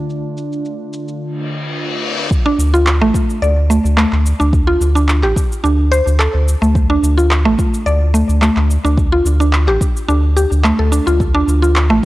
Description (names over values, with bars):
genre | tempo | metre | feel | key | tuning
organic downtempo | 108 BPM | 4/4 | swing 54% on 16ths | D minor | A4 = 440 Hz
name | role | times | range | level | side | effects
warbly tape-like pad | sustained chords | 0.0-2.3 s | D3 to F4 | -24 LUFS | equal | chorus, built-in reverb, sidechain pumping
electronic shaker and handclaps | drums | 0.1-11.9 s | none | -22 LUFS | equal | overdrive, low-pass filter on perc, low-pass filter on snare
reverse cymbal | sound effects | 1.4-2.3 s | none | -23 LUFS | left 4 dB | none
electronic kick drum | drums | 2.3-11.3 s | none | -16 LUFS | equal | none
mallet-like synth pluck | arpeggios | 2.5-12.1 s | A3 to D5 | -15 LUFS | equal | chorus, analog delay
round analog bass | bass | 2.6-12.0 s | A1 to D2 | -14 LUFS | equal | transformer saturation, sidechain pumping
room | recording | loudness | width
light reverb, digital ambience | dry, gritty hardware recording, transformer saturation, cassette tape | -12 LUFS | side -17 dB against mid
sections
0.0-2.3 A section; 2.3-12.1 B section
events
filter sweep on ambient pad 0.0-2.3; reverse cymbal 1.4-2.3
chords
0.0 Dm; 2.3 D5